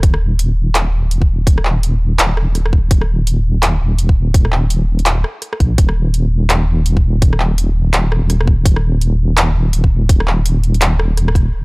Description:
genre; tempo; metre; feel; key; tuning
half-time drum and bass; 167 BPM; 4/4; swing 60% on 16ths, half-time; unclear; A4 = 442 Hz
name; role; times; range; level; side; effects
deep soft wobble bass; bass; 0.0-11.6 s; Eb1 to Bb1; -14 LUFS; equal; chorus
drum and bass drum kit; drums; 0.0-11.4 s; handclaps, hi-hat, rim click; -18 LUFS; equal; overdrive, low-pass filter on hats, small room ambience, low-pass filter on snare
electronic kick drum; drums; 0.0-11.4 s; none; -12 LUFS; equal; overdrive, small room ambience
room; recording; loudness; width
digital ambience; dry, gritty hardware recording; -12 LUFS; side -30 dB against mid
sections
0.0-11.5 A section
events
band accent 11.3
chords
none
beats
| 0.04 0.40 0.75 1.11 | 1.47 1.83 2.19 2.55 | 2.91 3.27 3.63 3.99 | 4.35 4.71 5.07 5.42 | 5.78 6.14 6.50 6.86 | 7.22 7.58 7.94 8.30 | 8.66 9.02 9.38 9.74 | 10.10 10.46 10.81 11.17 | 11.53

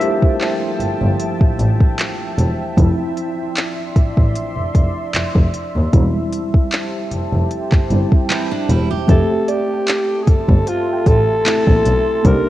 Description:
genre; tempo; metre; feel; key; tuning
contemporary R&B; 76 BPM; 4/4; swing 54% on 16ths; F major; A4 = 440 Hz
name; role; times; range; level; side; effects
mellow tine electric piano; accompaniment; 0.0-12.5 s; F3 to E5; -22 LUFS; equal; fast stereo tremolo, cassette tape
deep dark ambient pad; sustained chords; 0.0-12.5 s; F3 to C6; -26 LUFS; equal; chorus, built-in reverb, cassette tape
smooth R&B drum kit; drums; 0.0-12.4 s; handclaps, hi-hat, kick drum; -15 LUFS; equal; overdrive, cassette tape
warm double bass; bass; 0.8-12.3 s; E1 to Eb2; -18 LUFS; equal; none
picked steel-string acoustic guitar; arpeggios; 8.3-9.3 s; E3 to G4; -24 LUFS; right 7 dB; cassette tape
breathy alto saxophone; melody; 9.1-12.5 s; F4 to Bb4; -18 LUFS; equal; cassette tape, analog delay
soft round pluck; texture; 9.5-12.5 s; C5 to A5; -29 LUFS; right 8 dB; chorus, cassette tape, analog delay
room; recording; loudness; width
light reverb, small room reverb; home recording on cassette; -14 LUFS; side -14 dB against mid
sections
0.0-9.1 A section; 9.1-12.5 B section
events
tine electric piano solo 0.0-9.1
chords
0.0 Fmaj9; 2.8 Dm9/F; 5.9 Am7/E; 9.1 Fmaj7 (rootless)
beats
0.41 1.19 1.98 | 2.77 3.56 4.35 5.14 | 5.93 6.72 7.51 8.30 | 9.09 9.88 10.67 11.46 | 12.25

